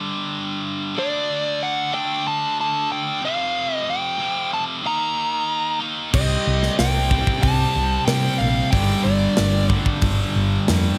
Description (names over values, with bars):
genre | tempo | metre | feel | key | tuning
hard rock | 93 BPM | 4/4 | straight | G minor | A4 = 440 Hz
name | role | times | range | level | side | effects
scooped high-gain guitar | riff | 0.0-11.0 s | F2 to Eb4 | -28 LUFS | equal | distortion
dark smooth lead guitar | melody | 1.0-9.7 s | D5 to Bb5 | -26 LUFS | equal | overdrive, slapback echo
cranked stack guitar | riff | 6.1-11.0 s | G2 to C4 | -28 LUFS | equal | overdrive
distorted electric guitar | riff | 6.1-11.0 s | G2 to C4 | -31 LUFS | equal | overdrive
hollow-body short-scale fingered electric bass | bass | 6.1-10.9 s | G1 to C3 | -24 LUFS | equal | none
tight metal drum kit | drums | 6.1-10.8 s | crash cymbal, hi-hat, kick drum, snare drum | -25 LUFS | equal | none
room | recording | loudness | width
little or no reverb | none | -21 LUFS | mono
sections
0.0-11.0 A section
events
none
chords
0.0 G5; 1.0 D5; 3.2 F5; 4.8 Eb5; 6.1 Cm; 8.7 G5